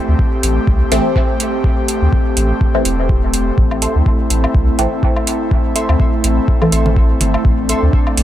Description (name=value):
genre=dub techno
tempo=124 BPM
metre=4/4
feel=swing 56% on 16ths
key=A minor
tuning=A4 = 440 Hz
part: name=airy breathy pad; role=sustained chords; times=0.0-8.2 s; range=A3 to G4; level=-19 LUFS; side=equal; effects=chorus, sidechain pumping
part: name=soft dub sub bass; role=bass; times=0.1-8.2 s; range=E1 to D2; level=-16 LUFS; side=equal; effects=sidechain pumping
part: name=electronic kick drum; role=drums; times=0.2-8.0 s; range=none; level=-16 LUFS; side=equal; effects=overdrive
part: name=electronic hi-hat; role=drums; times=0.4-8.2 s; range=none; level=-19 LUFS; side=right 3 dB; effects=overdrive
part: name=filtered dub chord stab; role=stabs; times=0.9-6.7 s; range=E3 to C4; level=-22 LUFS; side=equal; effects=phaser, sidechain pumping, dub echo
part: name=woodblock and congas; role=percussion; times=3.7-8.2 s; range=none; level=-24 LUFS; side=left 1 dB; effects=overdrive, sidechain pumping on perc, dub echo
part: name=wavetable chord stab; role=riff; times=3.8-7.8 s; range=A4 to C6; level=-26 LUFS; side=right 1 dB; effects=cassette tape, sidechain pumping, dub echo
room=little or no reverb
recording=none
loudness=-12 LUFS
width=side -12 dB against mid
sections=0.0-8.2 A section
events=none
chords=0.0 Am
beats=0.19 0.68 1.16 | 1.64 2.13 2.61 3.09 | 3.58 4.06 4.55 5.03 | 5.51 6.00 6.48 6.96 | 7.45 7.93